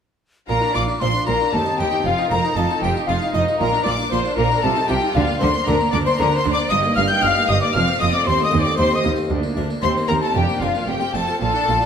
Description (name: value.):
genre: classical, baroque-style concerto movement with solo episodes.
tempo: 116 BPM.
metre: 3/4.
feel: straight.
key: Bb major.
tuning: A4 = 440 Hz.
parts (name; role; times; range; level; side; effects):
mellow hollow silver concert flute; melody; 0.5-11.9 s; Eb5 to G6; -23 LUFS; left 2 dB; none.
warm studio violin section; melody; 0.5-11.9 s; Eb5 to G6; -26 LUFS; left 4 dB; none.
rich chamber violin section; second line; 0.5-11.9 s; Eb4 to G5; -24 LUFS; left 3 dB; none.
harpsichord; accompaniment; 0.5-11.9 s; D2 to Eb5; -27 LUFS; equal; none.
rich chamber viola section; accompaniment; 0.5-11.9 s; G3 to F4; -27 LUFS; right 1 dB; none.
rich chamber cello section; bass; 0.5-11.8 s; D2 to D3; -25 LUFS; right 3 dB; none.
rich chamber double bass section; bass; 0.5-11.8 s; F1 to Eb2; -25 LUFS; right 3 dB; none.
room: wet recital hall reverb, RT60 1.4 s.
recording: none.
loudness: -17 LUFS.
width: side -7 dB against mid.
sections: 0.5-11.9 A section.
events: none.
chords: 0.5 Bb; 1.5 Cm/Eb; 2.1 F7; 3.6 Bb; 4.6 F7/C; 5.2 Bb/D; 6.7 Eb/G; 7.7 F; 8.3 F7/Eb; 9.3 Bb/D; 9.8 Cm7/Eb; 10.3 Bb/F; 10.9 F.